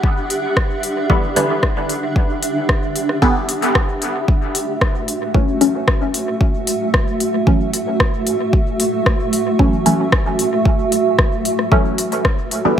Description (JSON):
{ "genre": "dub techno", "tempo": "113 BPM", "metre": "4/4", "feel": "straight", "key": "F# phrygian", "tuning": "A4 = 440 Hz", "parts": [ { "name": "granular cloud pad", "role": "sustained chords", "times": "0.0-12.7 s", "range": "A3 to E5", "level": "-20 LUFS", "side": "right 2 dB", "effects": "built-in reverb, sidechain pumping" }, { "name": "electronic kick drum", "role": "drums", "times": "0.0-12.4 s", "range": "none", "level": "-17 LUFS", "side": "equal", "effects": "small room ambience" }, { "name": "bubbling stepped-filter texture", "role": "texture", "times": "0.0-4.3 s", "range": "F#5", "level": "-33 LUFS", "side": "right 2 dB", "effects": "chorus, built-in reverb, sidechain pumping" }, { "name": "deep house drum kit", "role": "drums", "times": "0.3-12.6 s", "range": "hi-hat, rim click", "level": "-20 LUFS", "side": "left 1 dB", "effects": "small room ambience, dub echo" }, { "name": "filtered dub chord stab", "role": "stabs", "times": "1.1-12.8 s", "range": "D3 to C#4", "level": "-19 LUFS", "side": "equal", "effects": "phaser, sidechain pumping, dub echo" } ], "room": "light reverb, digital ambience", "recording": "none", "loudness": "-15 LUFS", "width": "side -9 dB against mid", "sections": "0.0-4.3 A section; 4.3-12.8 A section", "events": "none", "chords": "0.0 Em7; 4.3 F#m7" }